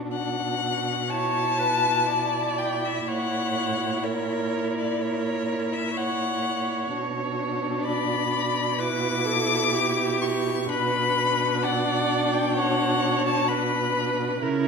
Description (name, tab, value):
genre	classical, slow romantic movement for string quartet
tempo	63 BPM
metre	4/4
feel	rubato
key	B minor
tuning	A4 = 439 Hz
part	warm violin	second line	0.0-14.7 s	D4 to E4	-30 LUFS	left 2 dB	none
part	warm cello	bass	0.0-14.7 s	A#2 to C#3	-29 LUFS	right 4 dB	none
part	clear violin	melody	0.1-14.4 s	C#5 to D6	-26 LUFS	left 5 dB	none
part	warm viola	accompaniment	1.1-14.7 s	G4 to D5	-28 LUFS	right 3 dB	none
room	moderate recital hall reverb, RT60 1.7 s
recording	minimal, uncompressed stereo recording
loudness	-22 LUFS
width	side -5 dB against mid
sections	0.0-14.7 A section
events	none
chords	0.0 Bm; 1.1 E5/B; 3.1 F#7/A#; 6.9 Bm; 8.8 Em/B; 10.7 Bm